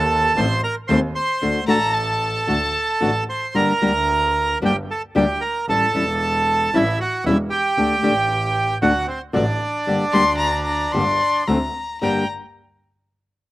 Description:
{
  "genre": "tango",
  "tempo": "114 BPM",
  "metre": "4/4",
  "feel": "rubato",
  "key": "G harmonic minor",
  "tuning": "A4 = 441 Hz",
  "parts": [
    { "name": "bandoneon", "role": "melody", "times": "0.0-12.3 s", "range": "C4 to C6", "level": "-20 LUFS", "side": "right 2 dB", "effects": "slapback echo" },
    { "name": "clear double bass", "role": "bass", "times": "0.0-12.2 s", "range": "E1 to Eb2", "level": "-26 LUFS", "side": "right 1 dB", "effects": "none" },
    { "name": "nylon-string guitar", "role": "accompaniment", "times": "0.4-12.2 s", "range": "G2 to G4", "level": "-20 LUFS", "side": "left 2 dB", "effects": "none" },
    { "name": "warm violin", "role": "second line", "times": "1.7-3.1, 10.1-12.3 s", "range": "A5 to C6", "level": "-22 LUFS", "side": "left 3 dB", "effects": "slapback echo" }
  ],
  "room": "little or no reverb",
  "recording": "recorded outdoors, with no room sound",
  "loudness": "-17 LUFS",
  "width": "side -17 dB against mid",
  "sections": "0.0-12.0 A section; 12.0-13.5 B section",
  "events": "none",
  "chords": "0.0 Adim; 1.4 D; 3.5 Gm; 5.7 A7; 7.8 Dsus4; 8.8 D; 9.9 Gm; 11.5 D7; 12.0 Gm",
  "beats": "0.36 0.89 | 1.42 1.94 2.47 3.00 | 3.54 4.08 4.62 5.15 | 5.68 6.21 6.73 7.25 | 7.77 8.29 8.82 9.34 | 9.87 10.40 10.93 11.47 | 12.02"
}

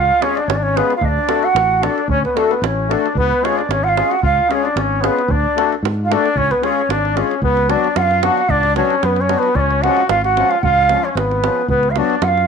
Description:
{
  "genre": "balkan folk, Balkan wedding band",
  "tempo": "112 BPM",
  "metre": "2/4",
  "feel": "straight",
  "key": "C# phrygian dominant",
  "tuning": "A4 = 440 Hz",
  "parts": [
    { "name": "breathy ney", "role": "melody", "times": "0.0-12.5 s", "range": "A4 to F#5", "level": "-17 LUFS", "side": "right 5 dB", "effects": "none" },
    { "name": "mellow trumpet", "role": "second line", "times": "0.0-12.5 s", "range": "A3 to F#4", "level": "-21 LUFS", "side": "left 11 dB", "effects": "none" },
    { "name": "fingered electric bass", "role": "bass", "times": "0.0-12.5 s", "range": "G#1 to G#2", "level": "-20 LUFS", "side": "equal", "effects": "none" },
    { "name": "accordion", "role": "accompaniment", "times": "0.2-12.2 s", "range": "E#3 to A4", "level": "-21 LUFS", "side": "left 14 dB", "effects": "light tremolo tuning" },
    { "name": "davul", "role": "percussion", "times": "0.2-12.4 s", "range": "none", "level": "-24 LUFS", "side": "right 6 dB", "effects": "none" }
  ],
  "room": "light reverb, small room ambience",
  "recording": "1960s-style stereo with parts hard left and right",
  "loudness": "-14 LUFS",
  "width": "side -6 dB against mid",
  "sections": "0.0-7.4 A section; 7.4-12.5 B section",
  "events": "none",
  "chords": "0.0 C#; 1.0 D; 3.2 C#; 5.3 D; 6.4 C#; 7.4 Bm/C#; 9.6 C#; 11.7 Bm/C#",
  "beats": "0.48 | 1.01 1.55 | 2.09 2.62 | 3.16 3.69 | 4.23 4.76 | 5.30 5.83 | 6.37 6.90 | 7.43 7.97 | 8.50 9.03 | 9.56 10.10 | 10.63 11.16 | 11.70 12.23"
}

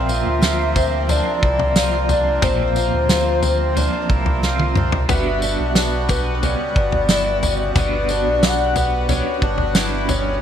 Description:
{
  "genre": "dream pop",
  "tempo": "90 BPM",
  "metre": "4/4",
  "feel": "straight",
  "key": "unclear",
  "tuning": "A4 = 440 Hz",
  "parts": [
    { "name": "hollow clarinet-like synth lead", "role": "melody", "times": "0.0-9.4 s", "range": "C5 to F#5", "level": "-23 LUFS", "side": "left 2 dB", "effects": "chorus, digital delay" },
    { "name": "clean electric guitar", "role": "accompaniment", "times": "0.0-10.4 s", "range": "Bb2 to F#4", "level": "-27 LUFS", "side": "right 4 dB", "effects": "tremolo, ensemble chorus" },
    { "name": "accordion", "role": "sustained chords", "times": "0.0-10.4 s", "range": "B2 to F#4", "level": "-25 LUFS", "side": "right 2 dB", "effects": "none" },
    { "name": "picked twelve-string acoustic guitar", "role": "arpeggios", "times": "0.0-10.4 s", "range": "C#3 to F4", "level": "-25 LUFS", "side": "left 4 dB", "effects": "wide subtle chorus, digital delay" },
    { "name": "sub bass with octave", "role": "bass", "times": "0.0-10.4 s", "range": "G1 to D2", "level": "-23 LUFS", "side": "equal", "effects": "none" },
    { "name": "loose indie drum kit", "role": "drums", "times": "0.1-10.2 s", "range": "kick drum, snare drum, tambourine, toms", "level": "-20 LUFS", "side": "equal", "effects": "none" }
  ],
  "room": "moderate plate reverb, RT60 2.4 s",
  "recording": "bright 1980s-style digital production",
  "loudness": "-16 LUFS",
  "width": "side -9 dB against mid",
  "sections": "0.0-5.1 A section; 5.1-10.4 B section",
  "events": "drum fill 4.4-5.1",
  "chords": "0.0 Bbsus2; 5.1 Gmaj7",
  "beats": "0.42 1.09 1.76 | 2.42 3.09 3.76 4.42 | 5.09 5.76 6.42 7.09 | 7.76 8.43 9.09 9.76"
}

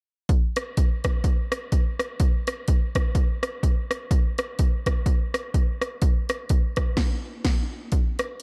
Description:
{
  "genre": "gospel",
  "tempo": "126 BPM",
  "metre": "4/4",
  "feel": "swing 58% on 8ths",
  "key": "none",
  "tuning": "none",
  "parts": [
    { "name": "punchy analog drum machine", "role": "drums", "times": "0.3-8.4 s", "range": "crash cymbal, hi-hat, kick drum, rim click, snare drum", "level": "-24 LUFS", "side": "equal", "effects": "none" }
  ],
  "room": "light reverb",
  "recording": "dark, warm production",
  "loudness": "-24 LUFS",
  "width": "mono",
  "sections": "0.3-7.9 A section",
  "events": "band accent 7.0-7.9",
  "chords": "none",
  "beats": "| 0.29 0.77 1.25 1.73 | 2.20 2.68 3.16 3.63 | 4.11 4.59 5.06 5.54 | 6.02 6.49 6.97 7.45 | 7.92 8.40"
}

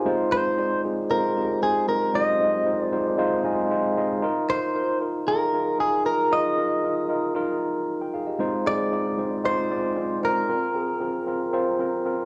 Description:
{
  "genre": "pop",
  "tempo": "115 BPM",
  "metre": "4/4",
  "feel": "straight",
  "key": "unclear",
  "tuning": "A4 = 440 Hz",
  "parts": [
    { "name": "mellow tine electric piano", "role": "accompaniment", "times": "0.0-12.3 s", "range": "Ab3 to C6", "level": "-26 LUFS", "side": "equal", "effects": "cassette tape" },
    { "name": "direct-recorded clean electric guitar", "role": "melody", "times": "0.3-12.0 s", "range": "Ab4 to Eb5", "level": "-27 LUFS", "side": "equal", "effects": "warbly pitch drift, cassette tape, analog delay" }
  ],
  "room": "wet studio reverb, RT60 0.6 s",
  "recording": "home recording on cassette, small room ambience",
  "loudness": "-24 LUFS",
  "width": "mono",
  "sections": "0.0-12.3 A section",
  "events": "tine electric piano fill 2.7-4.2",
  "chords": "0.1 Fm7/Ab; 4.2 Bbsus4; 8.4 Fm7/Ab; 10.5 Bbsus2",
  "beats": "| 0.06 0.58 1.10 1.62 | 2.15 2.67 3.19 3.71 | 4.23 4.75 5.28 5.80 | 6.32 6.84 7.36 7.88 | 8.41 8.93 9.45 9.97 | 10.49 11.02 11.54 12.06"
}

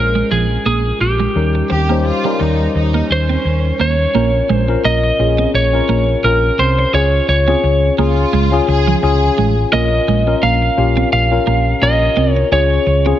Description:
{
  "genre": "pop",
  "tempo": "86 BPM",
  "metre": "4/4",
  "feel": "swing 55% on 16ths",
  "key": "unclear",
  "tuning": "A4 = 439 Hz",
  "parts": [
    { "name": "lightly driven lead guitar", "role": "melody", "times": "0.0-13.2 s", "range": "G4 to F5", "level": "-17 LUFS", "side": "right 1 dB", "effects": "none" },
    { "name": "tine electric piano", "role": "accompaniment", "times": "0.0-13.2 s", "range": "G3 to C5", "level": "-19 LUFS", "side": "left 6 dB", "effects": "wide subtle chorus" },
    { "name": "hollow-body short-scale fingered electric bass", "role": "bass", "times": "0.0-13.1 s", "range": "A1 to Eb2", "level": "-16 LUFS", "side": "equal", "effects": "none" },
    { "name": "twelve-string electric guitar", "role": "riff", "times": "0.2-13.2 s", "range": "F3 to Db4", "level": "-22 LUFS", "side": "right 8 dB", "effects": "analog chorus" },
    { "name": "warm symphonic violin section", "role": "second line", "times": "1.7-9.5 s", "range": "Db4 to Ab4", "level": "-22 LUFS", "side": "right 1 dB", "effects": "digital delay" }
  ],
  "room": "light reverb, digital ambience",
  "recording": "nothing above 7.6 kHz",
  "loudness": "-12 LUFS",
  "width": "side -11 dB against mid",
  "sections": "0.0-4.1 A section; 4.1-13.2 B section",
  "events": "none",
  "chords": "0.0 Bbm7; 1.4 Eb7; 4.1 Bbm; 6.9 Db; 9.7 Bbm; 12.5 Db",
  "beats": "0.66 | 1.36 2.05 2.75 3.45 | 4.15 4.84 5.54 6.24 | 6.94 7.63 8.33 9.03 | 9.73 10.43 11.12 11.82 | 12.52"
}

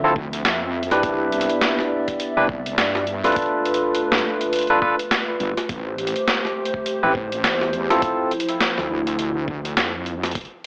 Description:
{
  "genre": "glitch hop",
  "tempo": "103 BPM",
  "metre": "4/4",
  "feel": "swing 59% on 16ths",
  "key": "unclear",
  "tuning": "A4 = 440 Hz",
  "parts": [
    { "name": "dark analog pad", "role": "sustained chords", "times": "0.0-10.3 s", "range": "F3 to E5", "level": "-28 LUFS", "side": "equal", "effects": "chorus, sidechain pumping, cassette tape" },
    { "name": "barky tine electric piano", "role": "stabs", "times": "0.0-8.3 s", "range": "C4 to B4", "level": "-24 LUFS", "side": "equal", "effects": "sidechain pumping, cassette tape, analog delay" },
    { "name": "wobble bass", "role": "bass", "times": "0.0-10.3 s", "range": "G1 to G2", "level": "-30 LUFS", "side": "equal", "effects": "chorus, overdrive" },
    { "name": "electronic kick drum", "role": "drums", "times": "0.2-10.5 s", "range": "none", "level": "-35 LUFS", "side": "equal", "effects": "cassette tape" },
    { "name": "boom bap sampler-style drum kit", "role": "drums", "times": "0.3-10.5 s", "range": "hi-hat, snare drum", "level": "-25 LUFS", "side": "equal", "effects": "cassette tape" }
  ],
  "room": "moderate small room reverb, RT60 0.6 s",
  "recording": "home recording on cassette, AM radio sound",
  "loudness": "-22 LUFS",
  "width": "mono",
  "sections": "0.0-10.7 A section",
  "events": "none",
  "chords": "0.0 Dm9; 1.0 Cmaj9; 3.4 G9 (rootless); 5.7 Am7; 8.0 Dm9",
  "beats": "0.45 | 1.03 1.61 2.20 2.78 | 3.36 3.94 4.53 5.11 | 5.69 6.28 6.86 7.44 | 8.02 8.61 9.19 9.77 | 10.35"
}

